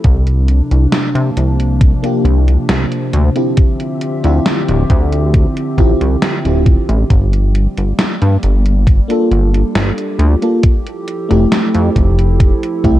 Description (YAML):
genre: vaporwave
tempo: 68 BPM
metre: 4/4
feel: straight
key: G dorian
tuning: A4 = 440 Hz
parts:
  - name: warbly tape-like pad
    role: sustained chords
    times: 0.0-13.0 s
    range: C3 to E5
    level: -20 LUFS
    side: equal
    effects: chorus, built-in reverb
  - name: chorused synth bass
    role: bass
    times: 0.0-13.0 s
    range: D1 to C3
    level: -12 LUFS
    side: equal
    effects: none
  - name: electronic kick drum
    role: drums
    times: 0.0-13.0 s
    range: none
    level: -11 LUFS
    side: equal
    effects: none
  - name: gated 80s digital drum machine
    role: drums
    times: 0.0-13.0 s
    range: hi-hat, snare drum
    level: -19 LUFS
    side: equal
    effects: gated reverb, gated reverb snare
  - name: FM electric piano with soft pad layer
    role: accompaniment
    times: 2.0-13.0 s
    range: A3 to A4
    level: -18 LUFS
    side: equal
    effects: tremolo, wide subtle chorus, analog delay
room: digital ambience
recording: dark, warm production, cassette tape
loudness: -11 LUFS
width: side -14 dB against mid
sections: 0.0-13.0 A section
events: none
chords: 0.0 C9sus4; 3.1 Dm11; 7.1 Gm7; 10.6 Fmaj9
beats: | 0.04 0.93 1.81 2.69 | 3.57 4.46 5.34 6.22 | 7.10 7.99 8.87 9.75 | 10.63 11.52 12.40